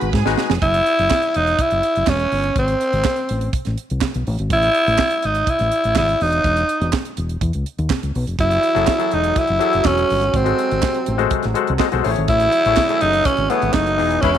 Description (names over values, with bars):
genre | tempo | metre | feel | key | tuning
disco | 123 BPM | 4/4 | straight | F# dorian | A4 = 440 Hz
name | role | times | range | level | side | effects
growling tenor saxophone | melody | 0.0-14.4 s | B3 to F#4 | -17 LUFS | equal | none
clear studio violin section | second line | 0.0-0.6 s | G#4 to G#5 | -28 LUFS | right 9 dB | none
mellow clav | accompaniment | 0.0-0.5, 8.7-14.4 s | E3 to F#5 | -22 LUFS | left 13 dB | none
mellow French horn section | sustained chords | 0.0-0.6, 8.4-14.4 s | B#2 to F#4 | -28 LUFS | right 14 dB | none
fingered electric bass | bass | 0.0-14.4 s | E1 to G#2 | -22 LUFS | left 1 dB | none
tight funk drum kit | drums | 0.0-14.4 s | handclaps, hi-hat, kick drum, snare drum | -23 LUFS | right 3 dB | none
warm horn section | stabs | 14.2-14.3 s | G#3 to B4 | -21 LUFS | left 14 dB | none
room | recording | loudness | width
light reverb, studio ambience | 1960s-style stereo with parts hard left and right | -16 LUFS | side -10 dB against mid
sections
0.6-14.4 A section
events
drum fill 0.1-0.6; clav fill 11.3-12.3; band accent 14.2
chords
0.0 G#m7; 0.6 F#5; 2.6 G#; 4.3 A5; 6.2 E5; 8.4 F#m9; 10.3 G#7b9; 12.0 Amaj7